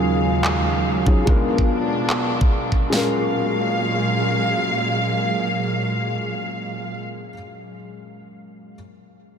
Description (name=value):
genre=future bass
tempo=145 BPM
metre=4/4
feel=half-time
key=F# major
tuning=A4 = 439 Hz
part: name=felt-muted upright piano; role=accompaniment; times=0.0-8.8 s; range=F#3 to A#4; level=-24 LUFS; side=left 2 dB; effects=analog chorus, sidechain pumping, tape echo
part: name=warm studio string section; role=sustained chords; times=0.0-7.0 s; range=D#2 to E#5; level=-23 LUFS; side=right 1 dB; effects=sidechain pumping
part: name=electronic handclaps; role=drums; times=0.4-2.2 s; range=none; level=-29 LUFS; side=equal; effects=none
part: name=dubstep drum kit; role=drums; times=1.1-3.0 s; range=kick drum, snare drum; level=-18 LUFS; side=equal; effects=none
room=wet cathedral reverb, RT60 6.5 s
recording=dreamy mix soaked in reverb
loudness=-18 LUFS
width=side -7 dB against mid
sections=0.0-2.9 A section; 2.9-6.2 B section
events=none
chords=0.0 D#m11; 1.3 A#7b9; 2.9 F#maj9